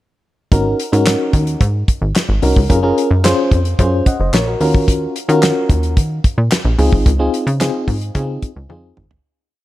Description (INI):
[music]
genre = early-eighties boogie funk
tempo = 110 BPM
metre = 4/4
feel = straight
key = unclear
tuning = A4 = 439 Hz
[part]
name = FM electric piano with auto-pan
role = accompaniment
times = 0.5-9.1 s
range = C4 to Gb5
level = -17 LUFS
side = left 1 dB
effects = none
[part]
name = plucky analog bass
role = bass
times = 0.5-9.2 s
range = Gb1 to Eb3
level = -16 LUFS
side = equal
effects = none
[part]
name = damped 70s drum kit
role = drums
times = 0.5-9.2 s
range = handclaps, hi-hat, kick drum, snare drum, toms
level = -16 LUFS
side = equal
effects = none
[sound]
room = light reverb, small room ambience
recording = none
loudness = -13 LUFS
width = side -15 dB against mid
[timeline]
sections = 0.5-9.2 verse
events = fade-out 7.1-9.2; drum fill 8.7-9.2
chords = 0.5 Ab7sus4; 2.7 Gbmaj9; 4.6 Ebm9; 6.8 Dbmaj7